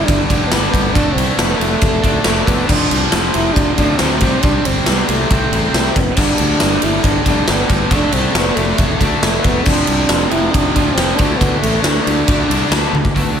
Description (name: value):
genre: hard rock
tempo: 138 BPM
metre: 4/4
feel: straight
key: D dorian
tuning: A4 = 440 Hz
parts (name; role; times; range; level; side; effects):
- mellow French horn; melody; 0.0-13.4 s; A3 to E4; -20 LUFS; right 1 dB; none
- tight distorted guitar; riff; 0.0-13.4 s; F2 to D4; -19 LUFS; left 2 dB; distortion
- fuzz fingered electric bass; bass; 0.1-13.4 s; F1 to D2; -20 LUFS; equal; overdrive
- big rock drum kit; drums; 0.1-13.3 s; crash cymbal, hi-hat, kick drum, ride cymbal, snare drum, toms; -16 LUFS; equal; none
room: light reverb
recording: none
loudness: -12 LUFS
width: side -8 dB against mid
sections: 0.0-13.1 A section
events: drum fill 12.9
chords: 0.0 G5; 1.0 Dm/F; 2.7 F5; 4.2 C5; 6.2 G5; 7.9 Dm/F; 9.7 F5; 11.2 D5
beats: 0.08 0.52 | 0.95 1.39 1.82 2.25 | 2.69 3.12 3.56 3.99 | 4.43 4.86 5.30 5.74 | 6.17 6.61 7.04 7.48 | 7.91 8.35 8.78 9.22 | 9.65 10.09 10.53 10.96 | 11.40 11.84 12.27 12.71 | 13.15